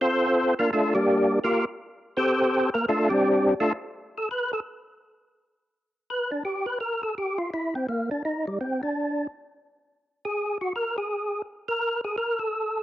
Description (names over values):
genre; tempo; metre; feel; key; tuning
jazz; 168 BPM; 4/4; swing 64% on 8ths; unclear; A4 = 438 Hz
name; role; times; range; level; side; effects
percussive tonewheel organ; solo; 0.0-12.8 s; G3 to C5; -23 LUFS; equal; slow rotary speaker, overdrive, chorus vibrato, cassette tape
room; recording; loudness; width
moderate spring reverb, RT60 1.7 s; home recording on cassette; -23 LUFS; side -14 dB against mid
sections
0.0-5.4 A section; 5.4-12.8 A section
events
tonewheel organ solo 0.0-5.4, 5.4-12.8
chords
0.0 Bbmaj9; 1.1 Gm7; 1.8 C5; 2.5 F69; 3.9 N.C.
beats
0.34 0.70 | 1.06 1.42 1.77 2.13 | 2.49 2.85 3.21 3.56 | 3.92 4.28 4.64 5.00 | 5.35 5.71 6.07 6.43 | 6.79 7.14 7.50 7.86 | 8.22 8.58 8.94 9.29 | 9.65 10.01 10.37 10.73 | 11.09 11.44 11.80 12.16 | 12.52